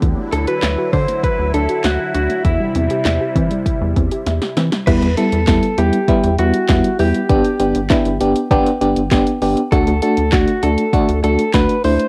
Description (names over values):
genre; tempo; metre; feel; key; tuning
synth-pop; 99 BPM; 4/4; straight; E minor; A4 = 440 Hz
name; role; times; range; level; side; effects
phased analog pad; sustained chords; 0.0-4.8 s; C3 to E4; -28 LUFS; equal; phaser, chorus, cassette tape
soft round pluck; arpeggios; 0.0-4.8 s; E3 to E5; -27 LUFS; equal; chorus, cassette tape
rubbery square bass; bass; 0.0-12.0 s; G1 to E3; -22 LUFS; equal; none
deep house drum kit; drums; 0.0-12.1 s; crash cymbal, handclaps, hi-hat, kick drum, snare drum; -21 LUFS; equal; cassette tape
direct-recorded clean electric guitar; melody; 0.3-12.1 s; E4 to C5; -22 LUFS; equal; spring reverb, cassette tape, plate reverb
FM electric piano with tremolo; accompaniment; 4.9-12.0 s; G3 to G4; -18 LUFS; equal; cassette tape, plate reverb
room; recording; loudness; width
moderate studio reverb, RT60 0.6 s; home recording on cassette; -16 LUFS; mono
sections
0.0-4.9 A section; 4.9-12.1 B section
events
drum fill 4.3-4.9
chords
0.0 Dadd9; 2.4 C/E; 4.9 Emadd9; 7.3 G; 9.7 D